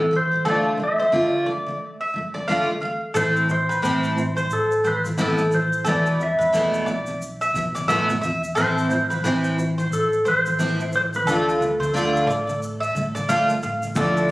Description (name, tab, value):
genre	acoustic pop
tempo	89 BPM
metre	4/4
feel	swing 60% on 16ths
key	A minor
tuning	A4 = 435 Hz
part	clean lap steel guitar	melody	0.0-14.3 s	A4 to E5	-22 LUFS	equal	tape echo
part	picked steel-string acoustic guitar	accompaniment	0.0-14.3 s	E2 to F4	-23 LUFS	equal	double-tracked left and right
part	mandolin	arpeggios	0.5-14.2 s	A4 to F5	-26 LUFS	equal	none
part	fingered electric bass	bass	3.1-14.3 s	E1 to D2	-32 LUFS	equal	none
part	egg shaker	percussion	3.2-14.3 s	none	-41 LUFS	equal	none
part	clear upright piano	accompaniment	13.9-14.3 s	A3 to D5	-26 LUFS	left 1 dB	none
part	shaker and kick drum	drums	14.0-14.2 s	none	-28 LUFS	equal	none
room	moderate small room reverb, RT60 0.6 s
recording	recorded on a phone in the room, studio reverb, compression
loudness	-19 LUFS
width	side -19 dB against mid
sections	0.0-14.0 A section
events	none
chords	0.5 Dm; 3.2 Amadd9; 5.9 Esus4; 8.6 Amadd9; 11.3 Dm